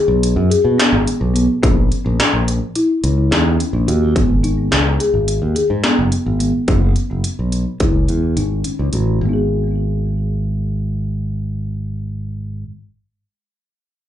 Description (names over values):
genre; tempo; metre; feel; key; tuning
progressive instrumental, band music in an uneven meter; 214 BPM (eighths); 9/8; straight; G# minor; A4 = 437 Hz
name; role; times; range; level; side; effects
folk marimba with soft mallets; arpeggios; 0.0-12.8 s; G#3 to G#4; -19 LUFS; left 3 dB; slapback echo, digital delay
modern bright fingered electric bass; bass; 0.1-12.6 s; F#1 to B2; -18 LUFS; equal; none
industrial drum kit; drums; 0.2-9.1 s; hi-hat, kick drum, snare drum; -17 LUFS; equal; distortion
room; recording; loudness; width
light reverb; live gig heard through the venue's PA, club ambience, nothing above 10.6 kHz; -15 LUFS; side -11 dB against mid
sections
0.0-9.2 A section; 9.2-11.7 B section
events
none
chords
0.0 B5; 1.6 A#dim; 4.2 G#m; 6.7 F#5; 7.8 C#m; 9.2 G#m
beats
0.23 0.51 0.79 1.07 1.35 | 1.63 1.91 2.19 2.47 2.75 3.03 3.31 3.59 3.87 | 4.15 4.43 4.71 5.00 5.28 5.56 5.84 6.12 6.40 | 6.68 6.96 7.24 7.53 7.81 8.09 8.37 8.65 8.93 | 9.21 9.49 9.78 10.06 10.34 10.62 10.90 11.19 11.47